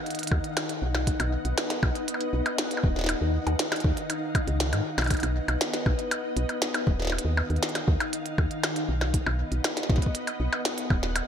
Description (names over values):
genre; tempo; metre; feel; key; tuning
IDM; 119 BPM; 4/4; straight; B lydian; A4 = 440 Hz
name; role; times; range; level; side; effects
soft string machine; sustained chords; 0.0-11.3 s; D#3 to F#5; -32 LUFS; left 1 dB; ensemble chorus
flickering grainy texture; texture; 0.0-11.3 s; D#4 to D#5; -37 LUFS; left 2 dB; built-in reverb
glitchy drum kit; drums; 0.1-11.3 s; hi-hat, percussion blips, snare drum; -29 LUFS; equal; overdrive, gated reverb, digital delay
woody FM bass; bass; 0.3-11.2 s; D#1 to G#2; -28 LUFS; equal; none
electronic kick drum; drums; 0.3-11.0 s; none; -26 LUFS; equal; overdrive
room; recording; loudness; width
moderate lush hall reverb, RT60 2.5 s; bright 1980s-style digital production; -24 LUFS; side -8 dB against mid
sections
0.0-11.3 A section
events
none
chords
0.0 D#madd9; 1.1 B; 3.1 D#madd9; 5.1 B; 7.1 D#madd9; 9.1 B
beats
0.06 0.57 | 1.07 1.58 2.08 2.58 | 3.09 3.59 4.10 4.60 | 5.11 5.61 6.11 6.62 | 7.12 7.63 8.13 8.63 | 9.14 9.64 10.15 10.65 | 11.16